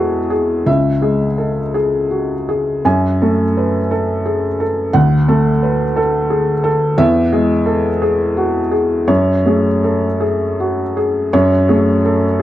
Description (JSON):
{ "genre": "neoclassical minimalist piano", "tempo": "53-59 BPM (dotted quarters)", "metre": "6/8", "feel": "rubato", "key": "F# minor", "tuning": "A4 = 445 Hz", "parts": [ { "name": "felt-muted upright piano", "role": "solo", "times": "0.0-12.4 s", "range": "C#2 to G#5", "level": "-13 LUFS", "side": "equal", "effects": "none" } ], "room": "light reverb, studio ambience", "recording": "dry, close 1970s-style studio recording", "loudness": "-13 LUFS", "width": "side -13 dB against mid", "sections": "0.0-11.3 A section; 11.3-12.4 B section", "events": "none", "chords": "0.0 E; 0.7 C#m; 2.8 F#madd9; 5.0 D; 7.0 E; 9.1 F#madd9" }